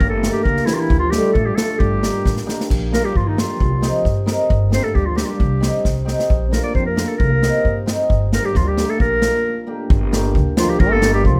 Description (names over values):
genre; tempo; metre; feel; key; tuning
klezmer; 133 BPM; 2/4; straight; Bb major; A4 = 440 Hz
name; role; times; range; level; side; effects
mellow clarinet; melody; 0.0-11.4 s; Eb4 to D5; -24 LUFS; equal; none
breathy trombone; second line; 0.0-11.4 s; Eb3 to C4; -27 LUFS; equal; none
upright bass; bass; 0.0-11.4 s; G1 to G2; -22 LUFS; equal; none
street-band drum kit; drums; 0.0-11.4 s; crash cymbal, kick drum, snare drum; -23 LUFS; equal; none
cimbalom; accompaniment; 0.2-11.1 s; A3 to Bb4; -26 LUFS; equal; none
room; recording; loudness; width
light reverb; close, detailed microphones; -18 LUFS; mono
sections
0.0-2.7 A section; 2.7-9.9 B section; 9.9-11.4 C section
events
drum fill 2.2-2.7, 5.8-6.3; break 9.4-9.9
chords
0.0 Gm; 0.9 Dm; 1.8 Gm; 2.7 Bb; 3.6 Cm; 4.5 Gm; 5.4 Cm; 6.3 Bb; 7.2 Cm; 8.1 Gm; 9.0 Bb; 9.9 Gm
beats
| 0.01 0.45 | 0.90 1.35 | 1.80 2.25 | 2.70 3.15 | 3.60 4.05 | 4.50 4.95 | 5.40 5.85 | 6.30 6.75 | 7.20 7.65 | 8.10 8.55 | 9.00 9.45 | 9.90 10.35 | 10.80 11.25